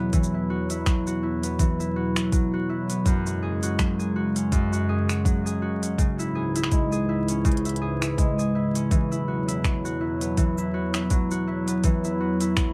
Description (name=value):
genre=folktronica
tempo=82 BPM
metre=4/4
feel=swing 56% on 16ths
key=E major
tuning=A4 = 439 Hz
part: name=warbly tape-like pad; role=sustained chords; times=0.0-12.7 s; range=C#2 to G#3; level=-31 LUFS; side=equal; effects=chorus, built-in reverb
part: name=concert harp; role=arpeggios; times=0.0-12.7 s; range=F#2 to G#4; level=-28 LUFS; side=equal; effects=tape echo
part: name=electronic kick drum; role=drums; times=0.1-12.7 s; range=none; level=-25 LUFS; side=equal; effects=none
part: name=organic electronic drum kit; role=drums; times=0.1-12.7 s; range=cabasa, finger snaps, hi-hat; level=-34 LUFS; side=equal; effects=none
room=moderate studio ambience, RT60 0.5 s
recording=vinyl crackle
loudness=-25 LUFS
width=mono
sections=0.0-12.7 A section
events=none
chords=0.0 Esus2; 3.1 F#sus2; 6.0 C#m; 8.9 Esus2